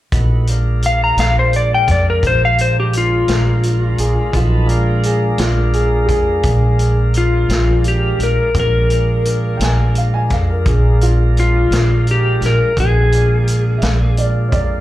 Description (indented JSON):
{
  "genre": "slow blues",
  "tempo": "57 BPM (dotted quarters)",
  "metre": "12/8",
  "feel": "straight",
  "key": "Bb mixolydian",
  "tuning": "A4 = 438 Hz",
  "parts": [
    { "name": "tonewheel organ", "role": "sustained chords", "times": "0.1-14.8 s", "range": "Gb3 to Cb5", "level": "-24 LUFS", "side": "equal", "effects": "slow rotary speaker" },
    { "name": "upright bass", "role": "bass", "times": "0.1-14.8 s", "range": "Bb1 to F2", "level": "-15 LUFS", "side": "equal", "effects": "none" },
    { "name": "vintage drum kit", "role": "drums", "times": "0.1-14.7 s", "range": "hi-hat, kick drum, snare drum", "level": "-21 LUFS", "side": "equal", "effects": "none" },
    { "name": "clean lap steel guitar", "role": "melody", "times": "0.9-14.1 s", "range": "F4 to Bb5", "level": "-17 LUFS", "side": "left 3 dB", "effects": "plate reverb, slapback echo" },
    { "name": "warm upright piano", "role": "second line", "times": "4.0-14.8 s", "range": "F4 to Ab5", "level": "-21 LUFS", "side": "right 1 dB", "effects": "plate reverb" }
  ],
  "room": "light reverb",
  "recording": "live gig heard through the venue's PA, club reverb",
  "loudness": "-12 LUFS",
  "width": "side -14 dB against mid",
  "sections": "0.1-14.8 A section",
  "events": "none",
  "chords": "0.1 Bb7"
}